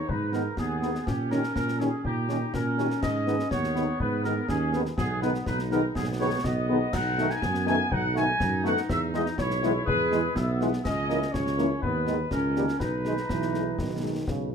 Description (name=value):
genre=military-style march for wind band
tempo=123 BPM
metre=2/4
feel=straight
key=G# minor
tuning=A4 = 443 Hz
part: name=dark trumpet section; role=melody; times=0.0-14.2 s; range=G4 to G#5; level=-30 LUFS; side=left 1 dB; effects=none
part: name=warm woodwind section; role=second line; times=0.0-14.5 s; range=B3 to G#4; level=-32 LUFS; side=left 1 dB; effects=none
part: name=mellow tuba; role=bass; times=0.1-14.5 s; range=B1 to A#2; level=-30 LUFS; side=right 4 dB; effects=none
part: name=concert bass drum, concert snare drum and clash cymbals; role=drums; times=0.1-14.5 s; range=none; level=-34 LUFS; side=left 2 dB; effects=none
part: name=dark French horn section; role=accompaniment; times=0.3-14.5 s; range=G#3 to A#4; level=-32 LUFS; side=left 5 dB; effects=none
part: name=warm trombone section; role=sustained chords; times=0.3-14.5 s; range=C#3 to C#4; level=-32 LUFS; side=right 3 dB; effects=none
room=moderate large studio reverb, RT60 0.9 s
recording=none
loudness=-24 LUFS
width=side -6 dB against mid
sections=0.0-14.5 A section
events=none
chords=0.0 G#m; 1.1 D#7/A#; 3.0 G#m; 5.0 G#m/B; 6.9 B7; 8.9 E; 10.9 A#dim/C#; 11.8 G#m/D#; 12.3 D#7/C#; 12.8 G#m/B